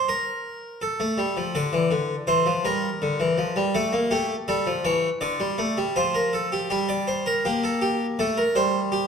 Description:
classical, baroque-style two-part invention for harpsichord; 82 BPM; 4/4; straight; G minor; A4 = 442 Hz
harpsichord; solo; 0.0-9.1 s; D3 to D5; -22 LUFS; equal
wet recital hall reverb, RT60 1.4 s; -22 LUFS; side -6 dB against mid
0.0-6.7 A section; 6.7-9.1 B section
0.0 N.C.; 0.8 Dm; 2.3 Edim; 3.7 A; 5.2 Dm; 6.7 Gm; 8.2 Gmadd9
0.08 | 0.82 1.55 2.28 3.02 | 3.75 4.48 5.22 5.95 | 6.70 7.44 8.18 8.92

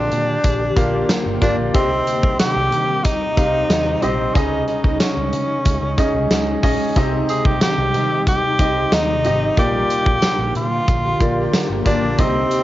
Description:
1980s-style pop; 92 BPM; 4/4; straight; A4 = 440 Hz
breathy tenor saxophone; melody; 0.0-12.6 s; C4 to Ab4; -20 LUFS; equal; cassette tape
clear baby grand piano; accompaniment; 0.0-12.6 s; Bb2 to F5; -22 LUFS; equal
ethereal airy pad; sustained chords; 0.0-12.6 s; C3 to G4; -26 LUFS; equal; ensemble chorus, built-in reverb, phaser
vintage muted fingered electric bass; bass; 0.0-12.4 s; G1 to Db3; -25 LUFS; equal
big rock drum kit; drums; 0.1-12.6 s; hi-hat, kick drum, snare drum, tambourine; -21 LUFS; equal; cassette tape
tambourine; percussion; 0.4-12.6 s; -37 LUFS; right 6 dB
mellow synth brass; stabs; 2.4-3.0, 7.6-8.2 s; Eb3 to G4; -29 LUFS; right 2 dB; chorus, phaser, analog delay
moderate spring reverb, RT60 2.4 s; home recording on cassette, nothing above 7.6 kHz; -15 LUFS; side -15 dB against mid
0.0-12.6 A section
0.0 Bb6; 1.7 Cm; 4.4 Dbsus2; 7.0 Cm; 9.6 Bb6
0.44 1.09 | 1.75 2.40 3.05 3.70 | 4.36 5.01 5.66 6.31 | 6.96 7.62 8.27 8.92 | 9.57 10.22 10.88 11.53 | 12.18

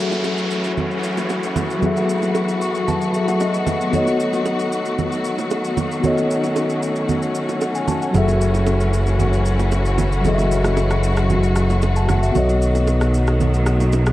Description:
amapiano; 114 BPM; 4/4; straight; F# dorian; A4 = 440 Hz
mellow tine electric piano; accompaniment; 0.0-14.1 s; F#3 to C#6; -21 LUFS; left 2 dB; medium stereo tremolo
warm studio string section; sustained chords; 0.0-14.1 s; D#3 to F#4; -23 LUFS; equal
downlifter; sound effects; 0.0-3.9 s; -30 LUFS; right 1 dB
electronic shaker and rim click; drums; 0.1-14.1 s; -32 LUFS; equal
bongos and congas; percussion; 0.1-14.1 s; -25 LUFS; right 5 dB
fat analog bass; bass; 8.1-14.1 s; F#1 to B1; -18 LUFS; equal
light reverb; worn, warbling old tape, cassette tape, warbly pitch drift; -16 LUFS; side -15 dB against mid
0.0-14.1 A section
tine electric piano fill 2.4-3.9
0.0 F#m7; 3.9 B7; 8.1 F#m7; 12.4 B7
0.25 0.77 1.30 | 1.82 2.35 2.88 3.40 | 3.93 4.46 4.98 5.51 | 6.04 6.56 7.09 7.62 | 8.14 8.67 9.19 9.72 | 10.25 10.77 11.30 11.82 | 12.35 12.88 13.40 13.93

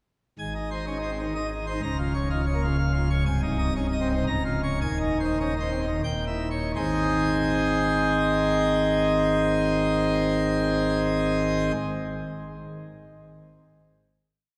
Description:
classical, organ toccata; 80-127 BPM; 3/4; straight; Ab major; A4 = 441 Hz
pipe organ, plenum; solo; 0.4-11.7 s; C1 to Bb5; -25 LUFS; equal
wet church reverb, RT60 3.9 s; recorded in a church or concert hall; -25 LUFS; mono
0.4-6.8 A section; 6.8-11.2 final chord
slowing down 2.5-6.8
0.4 Ab; 1.8 Bbm/Db; 3.3 Ab/C; 4.3 Bbm/Db; 4.8 Ab/Eb; 6.0 Eb7b9; 6.8 Ab
| 0.39 0.87 1.35 | 1.83 2.30 2.78 | 3.26 3.75 4.26 | 4.80 5.39 6.03 | 6.75 7.50 8.25 | 8.99 9.75 10.50

